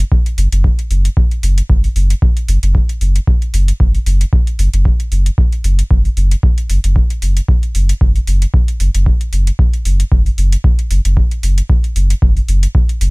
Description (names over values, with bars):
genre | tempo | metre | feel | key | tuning
dub techno | 114 BPM | 4/4 | swing 55% on 16ths | unclear | A4 = 440 Hz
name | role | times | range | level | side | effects
pure sine sub bass | bass | 0.0-13.1 s | F#1 | -12 LUFS | equal | tube saturation, sidechain pumping
electronic hi-hat | drums | 0.0-13.1 s | none | -27 LUFS | right 1 dB | none
electronic kick drum | drums | 0.1-12.9 s | none | -13 LUFS | equal | none
room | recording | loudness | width
little or no reverb | none | -11 LUFS | side -28 dB against mid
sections
0.0-13.1 A section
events
none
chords
none